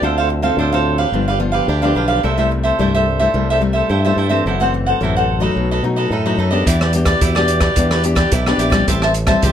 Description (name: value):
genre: samba and choro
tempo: 108 BPM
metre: 4/4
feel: straight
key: E minor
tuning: A4 = 440 Hz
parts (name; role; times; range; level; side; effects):
- cavaquinho; accompaniment; 0.0-9.5 s; D4 to A5; -18 LUFS; right 2 dB; none
- nylon-string guitar; accompaniment; 0.0-9.5 s; F#2 to A4; -20 LUFS; left 4 dB; none
- fingered electric bass with an envelope filter; bass; 0.0-9.5 s; F#1 to B2; -19 LUFS; equal; none
- open jazz drum kit; drums; 6.7-9.5 s; hi-hat, kick drum, rim click; -18 LUFS; right 1 dB; none
room: light reverb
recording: close, detailed microphones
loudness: -14 LUFS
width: side -9 dB against mid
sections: 0.0-9.5 A section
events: none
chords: 0.0 Dm7; 1.1 G7; 2.2 C6; 4.5 F#m7b5; 5.6 B7; 6.7 Em7; 8.9 Am7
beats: | 0.03 0.58 1.13 1.69 | 2.24 2.79 3.35 3.90 | 4.45 5.00 5.56 6.11 | 6.66 7.22 7.77 8.32 | 8.88 9.43